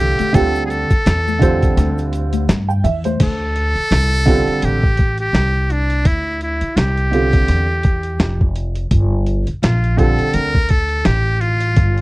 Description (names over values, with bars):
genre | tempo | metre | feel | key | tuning
hip hop, jazz-hop | 84 BPM | 4/4 | swing 57% on 16ths | D minor | A4 = 440 Hz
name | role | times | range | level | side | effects
trumpet with metal mute | melody | 0.0-12.0 s | D4 to Bb4 | -20 LUFS | equal | none
warm upright piano | accompaniment | 0.0-10.5 s | D3 to G5 | -19 LUFS | right 3 dB | none
upright bass | bass | 0.0-12.0 s | F1 to G2 | -18 LUFS | equal | none
boom bap sampler-style drum kit | drums | 0.2-12.0 s | crash cymbal, hi-hat, kick drum, snare drum | -16 LUFS | equal | none
congas and maracas | percussion | 0.2-3.2 s | none | -26 LUFS | left 9 dB | none
room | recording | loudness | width
little or no reverb | dry, close 1970s-style studio recording | -14 LUFS | side -20 dB against mid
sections
0.0-3.2 A section; 3.2-12.0 B section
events
break 1.8-3.2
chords
0.0 Dm11; 8.9 Gm11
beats
| 0.34 1.05 1.77 2.48 | 3.20 3.91 4.63 5.34 | 6.05 6.77 7.48 8.20 | 8.91 9.63 10.34 11.05 | 11.77